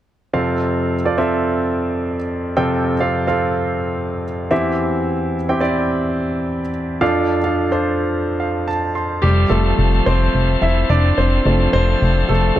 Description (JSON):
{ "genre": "pop", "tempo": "108 BPM", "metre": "4/4", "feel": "swing 56% on 16ths", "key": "F major", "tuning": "A4 = 440 Hz", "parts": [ { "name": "clear concert grand piano", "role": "accompaniment", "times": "0.3-12.6 s", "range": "E2 to C6", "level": "-17 LUFS", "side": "right 1 dB", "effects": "none" }, { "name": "bright tonewheel organ", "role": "sustained chords", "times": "9.2-12.6 s", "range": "F3 to C4", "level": "-24 LUFS", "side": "left 1 dB", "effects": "overdrive, fast rotary speaker" }, { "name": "chorused synth bass", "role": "bass", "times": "9.2-12.6 s", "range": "F1", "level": "-16 LUFS", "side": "left 1 dB", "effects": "none" } ], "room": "light reverb", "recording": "none", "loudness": "-16 LUFS", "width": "side -12 dB against mid", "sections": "0.3-9.2 A section; 9.2-12.6 B section", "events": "grand piano fill 8.1-9.2; grand piano solo 9.2-12.6", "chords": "0.3 F; 4.5 C/E; 7.0 Dm/F; 9.2 F" }